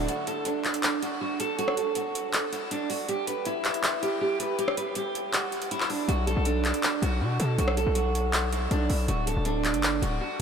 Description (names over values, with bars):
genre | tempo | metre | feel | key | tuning
hip hop, trap | 160 BPM | 4/4 | half-time | B minor | A4 = 440 Hz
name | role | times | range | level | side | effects
picked steel-string acoustic guitar | melody | 0.0-10.4 s | D4 to B4 | -28 LUFS | right 2 dB | wide subtle chorus, low-pass filter, ping-pong delay
distorted 808-style bass | bass | 0.0-0.1, 6.1-10.2 s | D1 to B2 | -27 LUFS | left 1 dB | distortion
booming analog drum machine | drums | 0.1-10.1 s | handclaps, hi-hat, rim click | -30 LUFS | left 1 dB | overdrive
room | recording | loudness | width
wet huge ambient reverb, RT60 5.6 s | dreamy mix soaked in reverb | -25 LUFS | side -7 dB against mid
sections
0.1-10.4 A section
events
break 0.1-6.1; kick muted 5.3-6.1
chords
0.1 N.C.; 6.1 Bm; 9.1 D